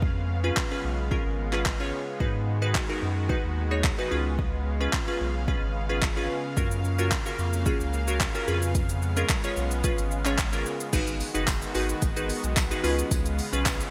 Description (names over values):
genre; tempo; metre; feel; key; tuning
dance-pop; 110 BPM; 4/4; straight; unclear; A4 = 440 Hz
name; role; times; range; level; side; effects
glassy wavetable pluck; accompaniment; 0.0-13.9 s; C#4 to C#5; -33 LUFS; equal; chorus
supersaw pad; sustained chords; 0.0-13.9 s; C#3 to E#5; -37 LUFS; equal; lush chorus, sidechain pumping
warm sub bass; bass; 0.0-13.8 s; F#1 to G#2; -31 LUFS; equal; sidechain pumping
deep house drum kit; drums; 0.0-13.9 s; crash cymbal, handclaps, hi-hat, kick drum, shaker; -30 LUFS; equal; gated reverb
tambourine; percussion; 10.9-13.8 s; none; -46 LUFS; equal; none
room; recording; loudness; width
light reverb; bright 1980s-style digital production; -27 LUFS; mono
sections
0.0-10.9 A section; 10.9-13.9 B section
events
none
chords
0.0 C#7; 2.2 G#m7; 4.1 C#7; 6.6 F#maj7; 8.5 C#7; 10.9 G#m7; 12.8 C#7